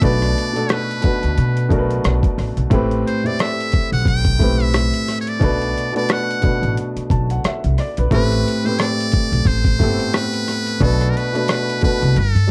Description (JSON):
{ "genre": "R&B, neo-soul", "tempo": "89 BPM", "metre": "4/4", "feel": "swing 57% on 16ths", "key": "unclear", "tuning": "A4 = 440 Hz", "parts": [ { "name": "trumpet with metal mute", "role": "melody", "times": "0.0-12.5 s", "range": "A4 to G5", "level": "-26 LUFS", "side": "equal", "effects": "slapback echo" }, { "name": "clear baby grand piano", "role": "accompaniment", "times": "0.0-12.5 s", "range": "A2 to A5", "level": "-23 LUFS", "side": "equal", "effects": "none" }, { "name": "upright bass", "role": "bass", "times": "0.0-12.5 s", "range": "G1 to B2", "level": "-21 LUFS", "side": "equal", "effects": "none" }, { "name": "dusty soul sampler-style drum kit", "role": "drums", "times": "0.0-12.5 s", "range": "hi-hat, kick drum, rim click", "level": "-22 LUFS", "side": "equal", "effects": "overdrive" } ], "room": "little or no reverb", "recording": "dry, close 1970s-style studio recording", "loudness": "-18 LUFS", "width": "mono", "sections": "0.0-12.5 A section", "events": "none", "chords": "0.0 Bm7; 2.7 Am9; 5.4 Bm7; 8.1 Am9; 10.8 Bm7" }